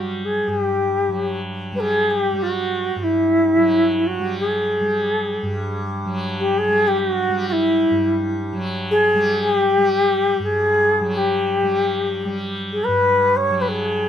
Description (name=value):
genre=indian classical, Hindustani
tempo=free time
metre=none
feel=none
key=unclear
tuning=A4 = 442 Hz
part: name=mellow bansuri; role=melody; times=0.0-14.1 s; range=E4 to C#5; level=-18 LUFS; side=left 1 dB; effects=none
part: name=tanpura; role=drone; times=0.0-14.1 s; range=G2 to G3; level=-25 LUFS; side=equal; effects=none
room=light reverb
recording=close, detailed microphones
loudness=-17 LUFS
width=side -9 dB against mid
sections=0.0-14.1 A section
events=none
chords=none